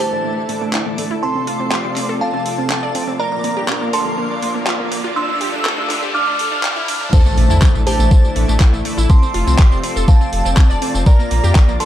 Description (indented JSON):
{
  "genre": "progressive house",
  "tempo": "122 BPM",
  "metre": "4/4",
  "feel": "straight",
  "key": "unclear",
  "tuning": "A4 = 439 Hz",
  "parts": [
    { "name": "glassy synth bell", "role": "melody", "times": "0.0-11.9 s", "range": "C5 to F6", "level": "-23 LUFS", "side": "right 2 dB", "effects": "chorus, sidechain pumping, digital delay" },
    { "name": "airy dreamy lead", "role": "second line", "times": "0.0-11.9 s", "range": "A5 to F6", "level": "-26 LUFS", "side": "equal", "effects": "chorus, sidechain pumping, digital delay" },
    { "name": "lush unison pad", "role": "sustained chords", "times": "0.0-11.9 s", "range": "C3 to Bb4", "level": "-26 LUFS", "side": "equal", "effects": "chorus, sidechain pumping" },
    { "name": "wide unison pluck", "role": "arpeggios", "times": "0.0-11.9 s", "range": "A3 to D5", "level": "-23 LUFS", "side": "equal", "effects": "sidechain pumping, digital delay" },
    { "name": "pop drum kit", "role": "drums", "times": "0.0-11.9 s", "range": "crash cymbal, handclaps, hi-hat, tambourine", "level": "-24 LUFS", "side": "equal", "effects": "overdrive" },
    { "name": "riser and impact", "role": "sound effects", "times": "1.5-9.1 s", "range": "none", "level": "-24 LUFS", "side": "equal", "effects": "none" },
    { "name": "twinkling granular texture", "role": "texture", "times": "0.0-11.9 s", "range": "D5 to D6", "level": "-32 LUFS", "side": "left 3 dB", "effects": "built-in reverb, sidechain pumping" },
    { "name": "electronic kick drum", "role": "drums", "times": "7.1-11.7 s", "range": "none", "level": "-10 LUFS", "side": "equal", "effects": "overdrive" },
    { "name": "saturated sub bass", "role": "bass", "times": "7.4-11.8 s", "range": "F1 to F2", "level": "-17 LUFS", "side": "equal", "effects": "sidechain pumping" }
  ],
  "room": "moderate recital hall reverb, RT60 1.5 s",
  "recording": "dark, warm production, high-pass filter",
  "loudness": "-13 LUFS",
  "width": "side -12 dB against mid",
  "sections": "0.0-7.1 A section; 7.1-11.9 B section",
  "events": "build-up 0.0-7.1; filter sweep on synth pluck 0.0-7.1; filter sweep 0.0-7.1; riser 1.5-7.1; drop 7.1-11.9; impact 7.1-9.1",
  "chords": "0.0 Asus4; 1.2 F; 3.2 Bb; 5.2 Dm; 7.1 Asus4; 9.1 F; 11.1 Bb",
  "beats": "0.24 0.74 | 1.23 1.72 2.21 2.70 | 3.19 3.69 4.18 4.67 | 5.16 5.65 6.15 6.64 | 7.13 7.62 8.11 8.61 | 9.10 9.59 10.08 10.57 | 11.06 11.55"
}